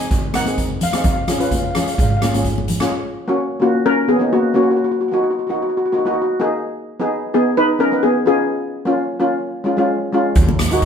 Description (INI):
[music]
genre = calypso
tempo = 129 BPM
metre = 4/4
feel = straight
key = F# major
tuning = A4 = 440 Hz
[part]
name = steel pan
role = melody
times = 0.0-10.1 s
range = A#3 to G#5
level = -17 LUFS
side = left 1 dB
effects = none
[part]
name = steel pan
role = accompaniment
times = 0.0-10.8 s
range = G#3 to B4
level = -20 LUFS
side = equal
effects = none
[part]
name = street-band drum kit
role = drums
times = 0.0-2.9, 10.4-10.8 s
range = hi-hat, kick drum, rim click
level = -19 LUFS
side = right 1 dB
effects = none
[part]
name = upright bass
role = bass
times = 0.1-2.8, 10.4-10.8 s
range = G#1 to D#2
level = -22 LUFS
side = right 2 dB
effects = none
[part]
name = congas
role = percussion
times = 0.3-2.9, 10.5-10.7 s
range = none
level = -25 LUFS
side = left 2 dB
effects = none
[sound]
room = moderate stone room reverb, RT60 1.1 s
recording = band playing live in one room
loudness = -15 LUFS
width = side -7 dB against mid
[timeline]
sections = 0.0-2.9 A section; 2.9-10.8 B section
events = none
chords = 0.0 G#7; 1.0 C#; 2.9 F#; 4.8 D#m; 6.6 G#m; 8.5 A#m; 9.4 C#